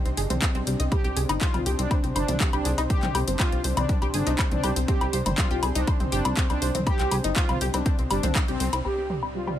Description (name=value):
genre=melodic techno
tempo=121 BPM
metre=4/4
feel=straight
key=unclear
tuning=A4 = 439 Hz
part: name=lush unison pad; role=sustained chords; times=0.0-9.6 s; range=C3 to C5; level=-35 LUFS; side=right 1 dB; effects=chorus, sidechain pumping
part: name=analog pluck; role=arpeggios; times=0.0-9.6 s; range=G3 to Eb5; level=-31 LUFS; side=left 1 dB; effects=wide subtle chorus, sidechain pumping, dub echo
part: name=plucky analog bass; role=bass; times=0.1-9.6 s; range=G1 to C2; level=-27 LUFS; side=equal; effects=sidechain pumping
part: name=house drum kit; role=drums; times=0.1-9.6 s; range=handclaps, hi-hat, toms, woodblock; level=-29 LUFS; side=left 2 dB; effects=overdrive, sidechain pumping on hats, low-pass filter on hats, small room ambience, low-pass filter on snare, sidechain pumping on toms, low-pass filter on toms, sidechain pumping on perc, low-pass filter on perc
part: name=electronic kick drum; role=drums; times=0.4-8.5 s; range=none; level=-24 LUFS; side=equal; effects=overdrive, small room ambience
part: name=analog synth brass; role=melody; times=0.9-9.6 s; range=C4 to G4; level=-31 LUFS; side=equal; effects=chorus, sidechain pumping, digital delay
part: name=overtone-sweeping drone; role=drone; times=9.2-9.6 s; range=C3 to G3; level=-38 LUFS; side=equal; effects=chorus, built-in reverb, phaser, sidechain pumping
room=little or no reverb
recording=none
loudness=-22 LUFS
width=side -11 dB against mid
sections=0.0-8.9 A section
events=band accent 8.4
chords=0.0 Csus2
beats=0.42 | 0.92 1.41 1.91 2.40 | 2.90 3.40 3.89 4.39 | 4.88 5.38 5.88 6.37 | 6.87 7.36 7.86 8.36 | 8.85 9.35